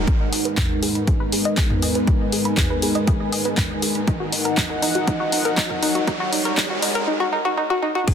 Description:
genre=melodic techno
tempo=120 BPM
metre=4/4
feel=straight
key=G# minor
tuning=A4 = 438 Hz
part: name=dark analog pad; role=sustained chords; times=0.0-8.1 s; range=G#3 to F#5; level=-25 LUFS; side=left 1 dB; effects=chorus, sidechain pumping
part: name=woody wave-folded pluck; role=arpeggios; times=0.0-8.1 s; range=D#4 to B5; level=-25 LUFS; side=equal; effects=chorus, sidechain pumping, dub echo
part: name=dark detuned saw bass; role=bass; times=0.0-0.1, 8.1 s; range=G#1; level=-28 LUFS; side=equal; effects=tube saturation, sidechain pumping
part: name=bowed-like drone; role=drone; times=0.0-7.1 s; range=G#2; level=-35 LUFS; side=left 1 dB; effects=built-in reverb, sidechain pumping
part: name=riser and sub drop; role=sound effects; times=0.0-8.1 s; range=none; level=-30 LUFS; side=right 1 dB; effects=none
part: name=ethereal airy pad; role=texture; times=0.0-7.1 s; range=B3 to G#5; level=-30 LUFS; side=right 2 dB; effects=ensemble chorus, built-in reverb, sidechain pumping
part: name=electronic kick drum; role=drums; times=0.1-8.1 s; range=none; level=-21 LUFS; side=equal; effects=none
part: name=punchy analog drum machine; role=drums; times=0.1-8.1 s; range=claves, crash cymbal, handclaps, hi-hat, toms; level=-25 LUFS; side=left 1 dB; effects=none
room=light reverb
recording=dense, heavily limited modern master, high-pass filter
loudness=-18 LUFS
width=side -8 dB against mid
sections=0.1-8.1 A section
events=build-up 0.1-8.1; riser 0.1-7.1; filter sweep on synth pluck 0.1-8.1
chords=0.1 G#m; 4.1 D#m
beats=| 0.08 0.58 1.08 1.58 | 2.08 2.58 3.08 3.58 | 4.08 4.58 5.08 5.58 | 6.08 6.58 7.08 7.58 | 8.08

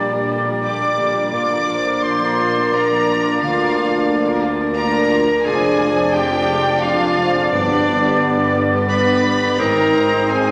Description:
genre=classical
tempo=87 BPM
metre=3/4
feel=rubato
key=unclear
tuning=A4 = 445 Hz
part: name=clear studio violin section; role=melody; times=0.0-10.5 s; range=D5 to D6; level=-25 LUFS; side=equal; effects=none
part: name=bright clarinet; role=second line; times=0.0-10.5 s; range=D4 to D5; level=-24 LUFS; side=equal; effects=none
part: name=clear oboe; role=second line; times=0.0-10.5 s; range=C5 to D5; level=-27 LUFS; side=equal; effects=none
part: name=hollow concert flute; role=second line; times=0.0-10.5 s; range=D6 to Eb6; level=-28 LUFS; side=equal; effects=none
part: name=rich studio violin section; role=second line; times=0.0-10.5 s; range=Bb3 to Bb4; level=-30 LUFS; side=equal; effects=none
part: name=rich studio viola section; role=accompaniment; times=0.0-10.5 s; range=D3 to Eb4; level=-32 LUFS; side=equal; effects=none
part: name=warm bassoon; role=accompaniment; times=0.0-10.5 s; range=G3 to D4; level=-27 LUFS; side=equal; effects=none
part: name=dark French horn section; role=sustained chords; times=0.0-10.5 s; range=G3 to Eb4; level=-24 LUFS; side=equal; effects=none
part: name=concert harp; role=arpeggios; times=0.0-10.5 s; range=F2 to D5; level=-31 LUFS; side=equal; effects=none
part: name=mellow tuba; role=bass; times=0.0-10.5 s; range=F1 to D2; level=-33 LUFS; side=equal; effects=none
part: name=rich studio double bass section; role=bass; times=0.0-10.5 s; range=F1 to D2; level=-36 LUFS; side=equal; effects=none
part: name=warm studio cello section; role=bass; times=0.0-10.5 s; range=D2 to Bb2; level=-32 LUFS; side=equal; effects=none
part: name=timpani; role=percussion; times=7.5-8.5 s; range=G2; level=-34 LUFS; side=equal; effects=none
room=wet scoring stage reverb, RT60 2.2 s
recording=none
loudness=-17 LUFS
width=mono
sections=0.0-10.5 A section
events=none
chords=0.0 Gm/Bb; 1.3 Bb; 3.4 Bb/D; 5.5 Ddim/F; 7.5 G; 9.6 Ab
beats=0.64 | 1.33 2.04 2.75 | 3.42 4.09 4.77 | 5.46 6.15 6.83 | 7.53 8.22 8.90 | 9.60 10.32

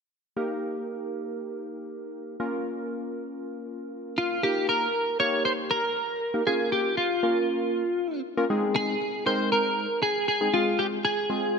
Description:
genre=pop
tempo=118 BPM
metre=4/4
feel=straight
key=unclear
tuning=A4 = 441 Hz
part: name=warm analog keys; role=accompaniment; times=0.4-11.6 s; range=Ab3 to Bb4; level=-29 LUFS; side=equal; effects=chorus
part: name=clean electric guitar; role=melody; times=4.2-11.6 s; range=F4 to Db5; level=-24 LUFS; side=equal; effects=analog chorus
room=moderate lush hall reverb, RT60 2.3 s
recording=none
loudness=-24 LUFS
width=side -5 dB against mid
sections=0.4-4.4 A section; 4.4-11.6 B section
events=none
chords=0.4 Eb; 2.4 Bbm; 4.4 Eb; 6.5 Bbm; 8.5 Ab; 10.5 Fm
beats=| 0.37 0.88 1.38 1.89 | 2.40 2.91 3.42 3.93 | 4.43 4.94 5.45 5.96 | 6.47 6.98 7.49 7.99 | 8.50 9.01 9.52 10.03 | 10.54 11.04 11.55

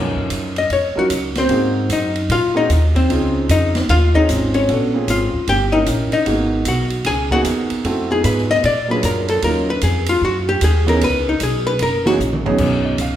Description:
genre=jazz, small-group swing and bop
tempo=151 BPM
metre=4/4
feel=swing 64% on 8ths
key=Eb minor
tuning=A4 = 440 Hz
part: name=archtop guitar, miked and amplified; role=melody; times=0.0-12.1 s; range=C4 to Ab5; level=-18 LUFS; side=left 2 dB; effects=none
part: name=warm baby grand piano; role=accompaniment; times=0.0-13.2 s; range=Db3 to F5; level=-21 LUFS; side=right 2 dB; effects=none
part: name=upright bass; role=bass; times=0.0-13.2 s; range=Gb1 to Bb2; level=-20 LUFS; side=equal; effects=none
part: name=open jazz drum kit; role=drums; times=0.2-13.1 s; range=crash cymbal, hi-hat, kick drum, ride cymbal, snare drum, toms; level=-26 LUFS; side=right 2 dB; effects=none
room=wet recital hall reverb, RT60 1.4 s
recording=recorded in a church or concert hall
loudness=-15 LUFS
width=side -11 dB against mid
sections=0.0-12.6 A section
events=hollow-body jazz guitar solo 0.0-12.6; drum fill 12.2-12.6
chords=0.0 Ebm9; 1.5 Ab9; 3.1 Dbmaj9; 4.7 Bbm9; 5.5 Eb7b9; 6.3 Abm9; 7.8 Fm7b5; 8.6 Bb7b13; 9.4 Ebm9; 11.0 Bsus2; 11.8 Gb13; 12.6 B69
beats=0.31 0.71 1.11 | 1.50 1.90 2.30 2.69 | 3.09 3.49 3.88 4.28 | 4.68 5.08 5.47 5.87 | 6.26 6.66 7.06 7.45 | 7.85 8.24 8.64 9.04 | 9.43 9.83 10.22 10.62 | 11.01 11.41 11.80 12.20 | 12.59 12.99

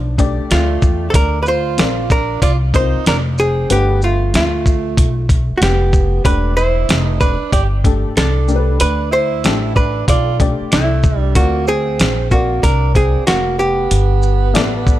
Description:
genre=hip hop, jazz-hop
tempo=94 BPM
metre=4/4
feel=swing 64% on 16ths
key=unclear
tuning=A4 = 438 Hz
part: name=archtop guitar, miked and amplified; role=melody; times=0.0-15.0 s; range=D4 to D5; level=-19 LUFS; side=equal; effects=none
part: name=breathy tenor saxophone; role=second line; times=0.0-15.0 s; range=F3 to G4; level=-23 LUFS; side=right 11 dB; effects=tape echo
part: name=upright bass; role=bass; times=0.0-15.0 s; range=E1 to E2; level=-17 LUFS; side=equal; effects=none
part: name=dark upright piano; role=accompaniment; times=0.2-15.0 s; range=A3 to F5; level=-23 LUFS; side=left 6 dB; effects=none
part: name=dusty soul sampler-style drum kit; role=drums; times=0.2-15.0 s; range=hi-hat, kick drum, shaker, snare drum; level=-15 LUFS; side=equal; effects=none
room=little or no reverb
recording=none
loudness=-12 LUFS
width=side -14 dB against mid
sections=0.0-15.0 A section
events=none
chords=0.0 Dm69; 1.1 Bbadd9; 3.7 G9; 6.2 Em7; 8.8 Dsus2; 11.4 Bb9; 13.9 Gadd9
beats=0.51 | 1.14 1.78 2.42 3.06 | 3.70 4.33 4.97 5.61 | 6.25 6.89 7.53 8.16 | 8.80 9.44 10.08 10.72 | 11.36 11.99 12.63 13.27 | 13.91 14.55

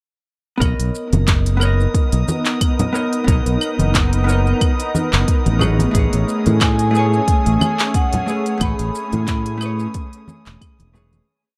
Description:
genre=sunset chillout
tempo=90 BPM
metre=4/4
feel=swing 55% on 16ths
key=B major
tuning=A4 = 440 Hz
part: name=vintage hollow-body jazz guitar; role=accompaniment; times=0.6-11.3 s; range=A3 to D#5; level=-26 LUFS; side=equal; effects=digital delay
part: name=shimmering ambient pad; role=sustained chords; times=1.4-11.2 s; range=A3 to A#4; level=-27 LUFS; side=equal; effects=chorus, built-in reverb
part: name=modern bright fingered electric bass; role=bass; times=0.6-11.2 s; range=E1 to A2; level=-20 LUFS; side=equal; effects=none
part: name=deep house drum kit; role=drums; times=0.6-11.3 s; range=claves, handclaps, hi-hat, shaker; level=-25 LUFS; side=equal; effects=small room ambience
part: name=electronic kick drum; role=drums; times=0.6-10.8 s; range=none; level=-21 LUFS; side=equal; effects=small room ambience
part: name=drifting glass-harmonics texture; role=texture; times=1.0-11.3 s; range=D#6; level=-36 LUFS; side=equal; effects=chorus, built-in reverb
part: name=congas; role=percussion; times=1.1-11.2 s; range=none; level=-24 LUFS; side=equal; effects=none
part: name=vibraphone with medium hard mallets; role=melody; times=6.6-9.9 s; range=F#5 to B5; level=-26 LUFS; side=equal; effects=none
room=light reverb, digital ambience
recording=dark, warm production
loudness=-17 LUFS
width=mono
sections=0.6-11.3 groove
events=fade-out 7.7-11.3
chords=0.6 Bmaj9; 5.6 Amaj9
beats=| 0.62 1.28 1.95 2.62 | 3.28 3.95 4.62 5.28 | 5.95 6.62 7.28 7.95 | 8.62 9.28 9.95 10.62

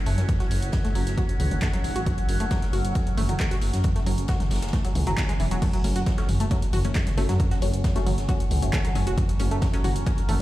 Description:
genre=driving peak-time techno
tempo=135 BPM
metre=4/4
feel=straight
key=F# minor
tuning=A4 = 442 Hz
part: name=overtone-sweeping drone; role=drone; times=0.0-10.4 s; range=F#3 to C#4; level=-35 LUFS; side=right 2 dB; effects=chorus, built-in reverb, sidechain pumping
part: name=deep dark ambient pad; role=texture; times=0.0-5.6 s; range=E4 to F#5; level=-38 LUFS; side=left 2 dB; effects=chorus, built-in reverb, sidechain pumping
part: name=tight sequenced synth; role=riff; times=0.1-10.3 s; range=E3 to F#4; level=-33 LUFS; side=right 1 dB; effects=chorus, tube saturation, sidechain pumping, tape echo
part: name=detuned saw bass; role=bass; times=0.1-10.4 s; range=E1 to F#2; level=-25 LUFS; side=equal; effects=sidechain pumping
part: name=huge arena drum kit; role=drums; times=0.1-10.4 s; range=ride cymbal, snare drum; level=-41 LUFS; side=equal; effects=high-pass filter on cymbals, high-pass filter on snare, high-pass filter on room
part: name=punchy analog drum machine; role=drums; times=0.1-10.4 s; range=crash cymbal, handclaps, hi-hat, toms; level=-33 LUFS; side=equal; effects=overdrive
part: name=electronic kick drum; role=drums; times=0.3-10.2 s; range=none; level=-24 LUFS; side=equal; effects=overdrive
part: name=filtered dub chord stab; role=stabs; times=5.8-10.2 s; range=F#3 to C#4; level=-33 LUFS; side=left 3 dB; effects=phaser, sidechain pumping, tape echo
room=little or no reverb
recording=played on a big sound system in a bare room, large studio reverb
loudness=-22 LUFS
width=side -16 dB against mid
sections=0.0-5.6 A section; 5.6-10.4 B section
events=filter sweep on synth arpeggio sound 0.0-5.6; band accent 5.2; drop 5.6-10.4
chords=0.0 F#m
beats=| 0.29 0.73 1.18 1.62 | 2.06 2.51 2.95 3.40 | 3.84 4.29 4.73 5.18 | 5.62 6.07 6.51 6.95 | 7.40 7.84 8.29 8.73 | 9.18 9.62 10.06

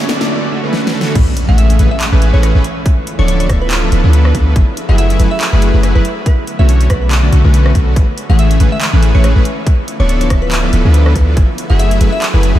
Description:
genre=future bass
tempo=141 BPM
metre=4/4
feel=swing 56% on 16ths, half-time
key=A major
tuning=A4 = 440 Hz
part: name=airy breathy pad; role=sustained chords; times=0.0-12.6 s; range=D3 to B4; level=-25 LUFS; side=right 1 dB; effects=chorus, sidechain pumping
part: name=big bright polysynth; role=riff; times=0.0-12.6 s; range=D3 to E5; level=-17 LUFS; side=equal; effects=cassette tape, sidechain pumping, diffuse ambient delay
part: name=warm 808-style bass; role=bass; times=0.0-12.6 s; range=D1 to D2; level=-10 LUFS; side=equal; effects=sidechain pumping, high-pass filter
part: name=big-room dance drum kit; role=drums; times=0.0-12.5 s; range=crash cymbal, handclaps, hi-hat, rim click, snare drum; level=-21 LUFS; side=equal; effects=none
part: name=riser and impact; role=sound effects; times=0.0-2.9 s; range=none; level=-22 LUFS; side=equal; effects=none
part: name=electronic kick drum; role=drums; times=1.2-11.5 s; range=none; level=-12 LUFS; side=equal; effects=overdrive
part: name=glassy wavetable pluck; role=melody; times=1.5-12.3 s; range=B4 to F#5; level=-23 LUFS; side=equal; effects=chorus, sidechain pumping, diffuse ambient delay
room=light reverb, digital ambience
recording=none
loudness=-9 LUFS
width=side -13 dB against mid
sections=0.0-1.2 A section; 1.2-12.6 B section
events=build-up 0.0-1.2; drum fill 0.0-0.3, 0.7-1.2; riser 0.0-0.3; drop 1.2-12.6; impact 1.2-2.9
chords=0.0 Bm9; 1.2 Amaj9; 2.9 Dm6; 4.6 F#m11; 6.3 Bm9; 8.0 Amaj9; 9.7 Dm6; 11.4 F#m11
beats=0.30 0.73 | 1.16 1.58 2.01 2.43 | 2.86 3.28 3.71 4.13 | 4.56 4.99 5.41 5.84 | 6.26 6.69 7.11 7.54 | 7.96 8.39 8.81 9.24 | 9.67 10.09 10.52 10.94 | 11.37 11.79 12.22

